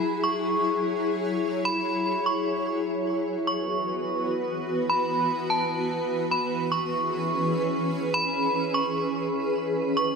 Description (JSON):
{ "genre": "hip hop", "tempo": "148 BPM", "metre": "4/4", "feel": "half-time", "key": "unclear", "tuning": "A4 = 440 Hz", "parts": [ { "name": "granular cloud pad", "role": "sustained chords", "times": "0.0-10.2 s", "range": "E3 to C#5", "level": "-26 LUFS", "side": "equal", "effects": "built-in reverb" }, { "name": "metallic FM bell", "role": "melody", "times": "0.2-10.2 s", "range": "A5 to C#6", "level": "-28 LUFS", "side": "right 1 dB", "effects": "chorus, phaser, low-pass filter, digital delay" } ], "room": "moderate lush hall reverb, RT60 2.7 s", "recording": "none", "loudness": "-24 LUFS", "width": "side -5 dB against mid", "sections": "0.0-3.3 A section; 3.3-10.2 B section", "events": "none", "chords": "0.0 Eadd9; 3.3 Bsus4; 6.5 C#m7", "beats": "| 0.03 0.43 0.84 1.25 | 1.65 2.06 2.46 2.87 | 3.27 3.68 4.08 4.49 | 4.89 5.30 5.71 6.11 | 6.52 6.92 7.33 7.73 | 8.14 8.54 8.95 9.35 | 9.76" }